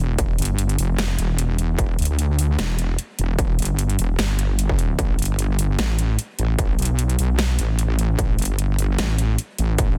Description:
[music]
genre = heavy wobble dubstep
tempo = 150 BPM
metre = 4/4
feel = swing 54% on 16ths, half-time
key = E phrygian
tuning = A4 = 440 Hz
[part]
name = wobble bass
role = bass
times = 0.0-10.0 s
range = E1 to D2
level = -22 LUFS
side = equal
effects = chorus, overdrive
[part]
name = dubstep drum kit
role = drums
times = 0.2-9.9 s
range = hi-hat, snare drum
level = -29 LUFS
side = equal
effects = none
[part]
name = electronic kick drum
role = drums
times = 0.2-9.9 s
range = none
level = -24 LUFS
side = equal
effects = distortion
[sound]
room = little or no reverb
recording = dense, heavily limited modern master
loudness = -21 LUFS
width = mono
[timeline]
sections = 0.0-10.0 A section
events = none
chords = none

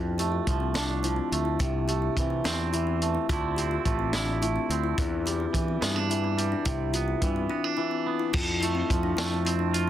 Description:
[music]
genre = math rock and midwest emo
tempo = 71 BPM (dotted quarters)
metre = 6/8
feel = straight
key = unclear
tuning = A4 = 440 Hz
[part]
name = twangy electric guitar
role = accompaniment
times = 0.0-9.9 s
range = E2 to F4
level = -30 LUFS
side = right 7 dB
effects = none
[part]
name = kalimba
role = arpeggios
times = 0.0-9.9 s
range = B3 to G4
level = -30 LUFS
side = left 6 dB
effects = none
[part]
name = growling fingered electric bass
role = bass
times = 0.0-9.9 s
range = A1 to E3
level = -30 LUFS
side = equal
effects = overdrive
[part]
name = compact cocktail drum kit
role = drums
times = 0.2-9.9 s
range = crash cymbal, hi-hat, kick drum, snare drum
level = -30 LUFS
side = equal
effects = none
[sound]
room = light reverb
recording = dense, heavily limited modern master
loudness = -25 LUFS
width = side -11 dB against mid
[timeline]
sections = 0.0-8.3 A section; 8.3-9.9 B section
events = none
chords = 0.0 F6; 1.6 C6; 3.3 Dm9; 5.0 Em7; 6.7 Cmaj9; 8.3 Fmaj7

